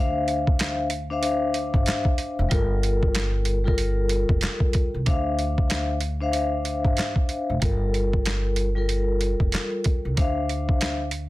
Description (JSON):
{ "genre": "hip hop, boom-bap hip-hop", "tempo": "94 BPM", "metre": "4/4", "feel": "swing 60% on 16ths", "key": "D minor", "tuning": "A4 = 440 Hz", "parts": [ { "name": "vibraphone with soft mallets", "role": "accompaniment", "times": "0.0-11.1 s", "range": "G3 to F5", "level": "-26 LUFS", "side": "left 2 dB", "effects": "high-pass filter, low-pass filter, plate reverb" }, { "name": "upright bass", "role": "bass", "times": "0.0-11.3 s", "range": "F1 to D2", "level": "-26 LUFS", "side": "equal", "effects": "none" }, { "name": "boom bap sampler-style drum kit", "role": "drums", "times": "0.3-11.3 s", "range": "handclaps, hi-hat, kick drum, snare drum", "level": "-23 LUFS", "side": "equal", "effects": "none" } ], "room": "little or no reverb", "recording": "dense, heavily limited modern master", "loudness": "-21 LUFS", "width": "side -18 dB against mid", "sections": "0.0-5.1 A section; 5.1-11.3 B section", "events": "none", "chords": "0.0 Dm9; 2.5 Gm9; 5.1 Dm9; 7.6 Gm9; 10.2 Dm9", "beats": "0.60 1.24 1.88 | 2.51 3.15 3.79 4.43 | 5.07 5.71 6.34 6.98 | 7.62 8.26 8.90 9.53 | 10.17 10.81" }